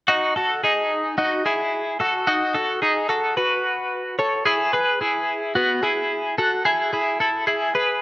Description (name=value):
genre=indie pop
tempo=110 BPM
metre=4/4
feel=straight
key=B mixolydian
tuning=A4 = 440 Hz
part: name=twelve-string electric guitar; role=arpeggios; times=0.1-8.0 s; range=B3 to C#5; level=-19 LUFS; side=equal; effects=harmonic tremolo
room=moderate lush hall reverb, RT60 2.2 s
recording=rough home demo mix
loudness=-19 LUFS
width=side -18 dB against mid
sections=0.1-8.0 A section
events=none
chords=0.1 B; 4.5 E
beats=| 0.08 0.63 1.18 1.72 | 2.27 2.82 3.37 3.91 | 4.46 5.01 5.56 6.10 | 6.65 7.20 7.74